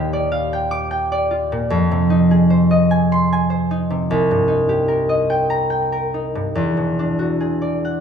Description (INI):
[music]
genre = classical, solo harp piece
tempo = 46-51 BPM (dotted quarters)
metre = 6/8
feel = rubato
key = unclear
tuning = A4 = 440 Hz
[part]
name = concert harp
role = solo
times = 0.0-8.0 s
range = C2 to D6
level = -16 LUFS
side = equal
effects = none
[sound]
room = wet recital hall reverb, RT60 1.6 s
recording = minimal, uncompressed stereo recording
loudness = -16 LUFS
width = side -7 dB against mid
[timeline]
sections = 0.0-8.0 A section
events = none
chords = 0.0 Ebmaj9; 1.7 Fm7; 4.1 Cm7; 6.6 E9